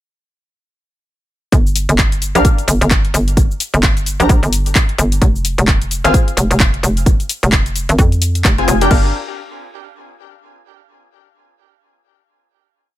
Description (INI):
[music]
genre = bass house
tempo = 130 BPM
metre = 4/4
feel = swing 59% on 16ths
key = G phrygian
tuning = A4 = 436 Hz
[part]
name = hollow knocking FM bass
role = bass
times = 1.5-9.1 s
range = F1 to F2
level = -15 LUFS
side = equal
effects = tube saturation, sidechain pumping
[part]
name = electronic kick drum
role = drums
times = 1.5-9.0 s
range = none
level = -13 LUFS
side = equal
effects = none
[part]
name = house drum kit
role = drums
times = 1.5-9.0 s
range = crash cymbal, handclaps, hi-hat, shaker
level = -19 LUFS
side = left 1 dB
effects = none
[part]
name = orchestra-hit-like synth stab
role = stabs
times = 2.4-9.1 s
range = C4 to Bb5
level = -19 LUFS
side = left 2 dB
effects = built-in reverb, sidechain pumping, ping-pong delay
[sound]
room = little or no reverb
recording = none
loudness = -12 LUFS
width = side -14 dB against mid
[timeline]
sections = 1.5-8.9 drop; 8.9-10.8 final chord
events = drop 1.5-8.9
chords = 1.5 Gm; 5.2 Fm; 8.9 Gm7